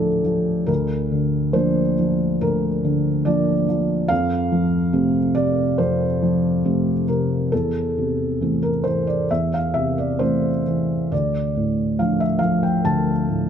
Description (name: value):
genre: neoclassical minimalist piano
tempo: 69 BPM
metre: 4/4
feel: uneven beats, rubato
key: D minor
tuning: A4 = 440 Hz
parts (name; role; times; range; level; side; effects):
- felt-muted upright piano; solo; 0.0-13.5 s; D2 to A5; -18 LUFS; equal; none
room: light reverb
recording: dark, warm production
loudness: -18 LUFS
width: side -8 dB against mid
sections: 0.0-13.5 A section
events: none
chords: 0.0 Dm; 0.7 Bb/D; 4.1 F; 7.5 Am/E; 11.1 Dm